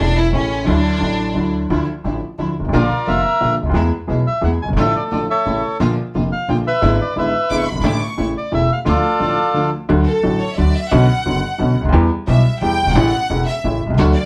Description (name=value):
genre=tango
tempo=176 BPM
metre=3/4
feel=rubato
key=D minor, D major from 9.9 s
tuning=A4 = 445 Hz
part: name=clear studio violin section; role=second line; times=0.0-1.5, 7.5-14.3 s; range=C#4 to D6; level=-24 LUFS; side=equal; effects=none
part: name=clear upright piano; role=accompaniment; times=0.0-14.1 s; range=E1 to G#4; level=-21 LUFS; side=equal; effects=none
part: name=clear symphonic string section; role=stabs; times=0.0-9.7, 14.0-14.1 s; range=F3 to F#4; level=-30 LUFS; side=equal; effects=none
part: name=upright bass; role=bass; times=0.0-14.1 s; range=E1 to E2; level=-21 LUFS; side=equal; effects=none
part: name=bandoneon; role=melody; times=2.7-9.7 s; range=F4 to G#5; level=-20 LUFS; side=equal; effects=none
room=wet studio reverb, RT60 0.6 s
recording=heard from further back in the room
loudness=-17 LUFS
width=mono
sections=0.0-1.7 A section; 1.7-9.9 B section; 9.9-14.3 A section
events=violin section solo 0.0-1.7, 9.9-14.3; break 9.6-9.9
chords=0.0 A; 0.7 Dadd9; 1.7 Dmadd9; 2.7 Bb; 3.7 E; 4.8 Dm/A; 5.5 A; 5.8 Bb; 6.8 E7/G#; 7.8 Asus4; 8.2 A; 8.9 Dm; 9.9 D; 10.9 Bmadd9; 11.9 Em; 13.0 A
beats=0.33 | 0.67 1.01 1.35 | 1.70 2.04 2.38 | 2.73 3.07 3.41 | 3.75 4.08 4.42 | 4.77 5.11 5.46 | 5.80 6.14 6.48 | 6.82 7.16 7.50 | 7.84 8.18 8.52 | 8.86 9.20 9.55 | 9.90 10.24 10.58 | 10.92 11.26 11.59 | 11.93 12.27 12.61 | 12.95 13.29 13.64 | 13.98